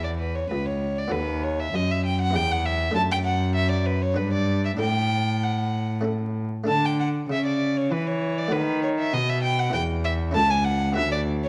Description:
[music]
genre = classical, baroque-style sonata movement with continuo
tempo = 98 BPM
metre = 3/4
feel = straight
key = D major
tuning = A4 = 440 Hz
[part]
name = rich violin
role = melody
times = 0.0-11.5 s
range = B4 to A5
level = -28 LUFS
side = equal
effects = none
[part]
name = buff-stop harpsichord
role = accompaniment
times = 0.0-11.5 s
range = C#2 to B4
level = -34 LUFS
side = equal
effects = none
[part]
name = rich cello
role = bass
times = 0.0-11.5 s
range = C#2 to E3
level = -27 LUFS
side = equal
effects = none
[sound]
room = moderate recital hall reverb, RT60 1.5 s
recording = vinyl crackle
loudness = -24 LUFS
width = mono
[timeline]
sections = 0.0-11.5 A section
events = none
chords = 0.0 D; 1.1 B7/D#; 2.3 Em; 3.0 D/F#; 4.2 G; 4.8 D/A; 6.1 A; 6.7 D5; 8.5 B7/D#; 9.7 E5; 10.4 A/C#; 11.0 Bm/D

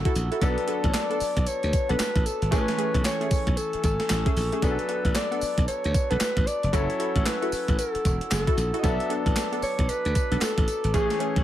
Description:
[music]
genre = R&B, new jack swing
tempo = 114 BPM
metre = 4/4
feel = swing 62% on 16ths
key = B dorian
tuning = A4 = 439 Hz
[part]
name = mellow alto saxophone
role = melody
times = 0.0-11.4 s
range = G#4 to E5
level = -29 LUFS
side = equal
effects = none
[part]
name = bright concert grand piano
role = accompaniment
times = 0.0-11.4 s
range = E3 to G#5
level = -33 LUFS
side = left 6 dB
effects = none
[part]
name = glass harmonica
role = sustained chords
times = 0.0-11.4 s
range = A3 to E6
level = -35 LUFS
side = right 2 dB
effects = none
[part]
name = glassy slap bass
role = bass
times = 0.0-11.4 s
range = E1 to D2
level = -27 LUFS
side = equal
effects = none
[part]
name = funky polysynth comp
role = stabs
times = 0.1-11.4 s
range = A3 to A4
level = -32 LUFS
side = right 1 dB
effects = chorus
[part]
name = clean 12-bit digital drum machine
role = drums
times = 0.1-11.4 s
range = handclaps, hi-hat, kick drum, snare drum, tambourine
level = -26 LUFS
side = equal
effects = overdrive
[part]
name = group handclap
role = percussion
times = 0.9-10.6 s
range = none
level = barely audible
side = none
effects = none
[sound]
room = studio reverb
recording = none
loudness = -22 LUFS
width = side -12 dB against mid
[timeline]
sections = 0.0-11.4 A section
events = none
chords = 0.4 Bm7; 2.5 Amaj7; 4.6 Bm7; 6.7 F#m7; 8.8 Bm7

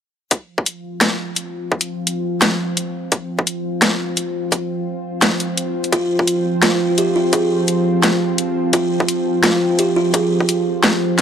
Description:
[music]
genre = half-time drum and bass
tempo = 171 BPM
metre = 4/4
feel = half-time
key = F minor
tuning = A4 = 440 Hz
[part]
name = bowed-like drone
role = sustained chords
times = 0.8-11.2 s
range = F3 to C5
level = -21 LUFS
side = equal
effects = built-in reverb, sidechain pumping
[part]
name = drum and bass drum kit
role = drums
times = 0.3-11.2 s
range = hi-hat, snare drum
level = -16 LUFS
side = left 1 dB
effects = overdrive
[part]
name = electronic kick drum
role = drums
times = 0.3-10.5 s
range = none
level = -18 LUFS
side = equal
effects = overdrive, high-pass filter on kick
[part]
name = buzzing kalimba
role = arpeggios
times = 5.9-10.8 s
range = F4 to Ab4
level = -18 LUFS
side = right 1 dB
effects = analog delay
[sound]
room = light reverb, digital ambience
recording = dry, gritty hardware recording, transformer saturation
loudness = -16 LUFS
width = side -8 dB against mid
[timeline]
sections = 0.3-11.2 A section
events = none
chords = 0.3 F5

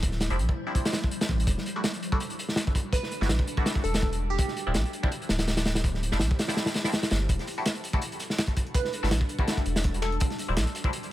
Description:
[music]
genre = drum and bass, jungle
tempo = 165 BPM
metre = 4/4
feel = swing 55% on 16ths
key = unclear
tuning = A4 = 441 Hz
[part]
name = granular cloud pad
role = sustained chords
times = 0.0-11.1 s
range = F3 to C5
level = -38 LUFS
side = equal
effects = built-in reverb
[part]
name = soft dub sub bass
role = bass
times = 0.0-10.7 s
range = D1 to B1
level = -28 LUFS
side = equal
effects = none
[part]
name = crunchy breakbeat drum kit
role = drums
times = 0.0-11.1 s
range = hi-hat, kick drum, snare drum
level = -27 LUFS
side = equal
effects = none
[part]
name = band-passed chord stab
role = stabs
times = 0.3-10.9 s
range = F3 to F#4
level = -36 LUFS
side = left 1 dB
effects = phaser, vintage 12-bit sampler grit, dub echo
[part]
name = glassy wavetable pluck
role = melody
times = 2.9-4.4, 8.7-10.2 s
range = G4 to B4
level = -35 LUFS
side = right 2 dB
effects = chorus, vintage 12-bit sampler grit, dub echo
[part]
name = dusty soul sampler-style drum kit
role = drums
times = 7.3-11.1 s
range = hi-hat, snare drum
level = -40 LUFS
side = right 2 dB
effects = high-pass filter on hats, high-pass filter on snare
[sound]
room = studio reverb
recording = none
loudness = -25 LUFS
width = side -14 dB against mid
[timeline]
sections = 0.0-11.1 A section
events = none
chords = 0.0 Dm11; 1.5 Em11; 4.4 Dm11; 7.3 Em11; 10.2 Dm11

